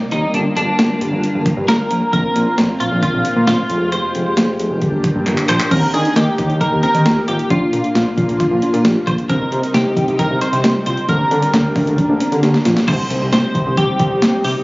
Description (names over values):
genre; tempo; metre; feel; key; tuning
synth-pop; 134 BPM; 4/4; straight; C minor; A4 = 440 Hz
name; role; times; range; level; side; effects
ensemble organ-string; sustained chords; 0.0-14.6 s; C3 to D5; -22 LUFS; equal; ensemble chorus
twelve-string electric guitar; melody; 0.1-14.5 s; D4 to C5; -20 LUFS; equal; analog chorus, tape echo
fat analog bass; bass; 0.1-14.5 s; F1 to Eb3; -18 LUFS; equal; none
clean 12-bit digital drum machine; drums; 0.1-14.5 s; crash cymbal, handclaps, hi-hat, kick drum, snare drum; -18 LUFS; equal; overdrive
soft round pluck; arpeggios; 5.7-12.8 s; C4 to G4; -22 LUFS; equal; chorus, tape echo
room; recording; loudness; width
moderate lush hall reverb, RT60 2.3 s; recorded on a phone in the room, club reverb, compression, nothing above 7.5 kHz; -13 LUFS; side -22 dB against mid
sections
0.0-5.7 A section; 5.7-12.9 B section; 12.9-14.6 C section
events
drum fill 5.3-5.7, 12.4-12.9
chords
0.3 Gm7; 2.1 Bbsus2; 3.7 Fmadd9; 4.8 Gm; 5.7 Eb; 7.5 Bb; 9.3 Cm; 11.1 Gm/D; 12.9 Cm